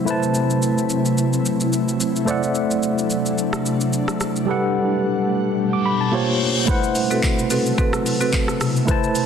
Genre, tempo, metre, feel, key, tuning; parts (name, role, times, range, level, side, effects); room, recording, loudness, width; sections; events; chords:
amapiano; 109 BPM; 4/4; swing 55% on 16ths; A dorian; A4 = 439 Hz
tine electric piano; accompaniment; 0.0-9.3 s; G3 to D6; -21 LUFS; equal; slow stereo tremolo, low-pass filter
ethereal airy pad; sustained chords; 0.0-9.3 s; B2 to F#5; -23 LUFS; left 1 dB; ensemble chorus, built-in reverb, low-pass filter
deep house drum kit; drums; 0.1-9.3 s; handclaps, hi-hat, kick drum, rim click, shaker; -24 LUFS; equal; vintage 12-bit sampler grit
reverse cymbal; sound effects; 5.8-6.7 s; -26 LUFS; left 4 dB
marimba with medium mallets; stabs; 7.1-8.3 s; C4 to B4; -24 LUFS; right 3 dB; digital delay
moderate lush hall reverb, RT60 2.1 s; dense, heavily limited modern master; -18 LUFS; side -7 dB against mid
0.0-6.7 A section; 6.7-9.3 B section
filter sweep 0.0-6.7; reverse cymbal 5.8-6.7
0.0 Am69; 2.3 D9; 4.5 Gmaj9; 6.1 Bbm69; 6.7 Am69